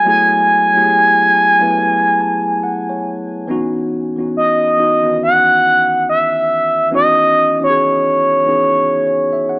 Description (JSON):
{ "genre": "R&B", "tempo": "70 BPM", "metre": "4/4", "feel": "swing 61% on 16ths", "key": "C# minor", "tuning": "A4 = 438 Hz", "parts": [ { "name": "expressive synth lead", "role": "melody", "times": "0.0-9.6 s", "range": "C#5 to G#5", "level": "-11 LUFS", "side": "equal", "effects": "chorus" }, { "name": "mellow tine electric piano", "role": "accompaniment", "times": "0.0-9.6 s", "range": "D#3 to A5", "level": "-20 LUFS", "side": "equal", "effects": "lush chorus" } ], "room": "light reverb, digital ambience", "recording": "AM radio sound", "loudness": "-11 LUFS", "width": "side -29 dB against mid", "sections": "0.0-9.6 A section", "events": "tine electric piano fill 0.9-3.5, 8.6-9.6", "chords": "0.0 F#m11; 3.5 C#m11" }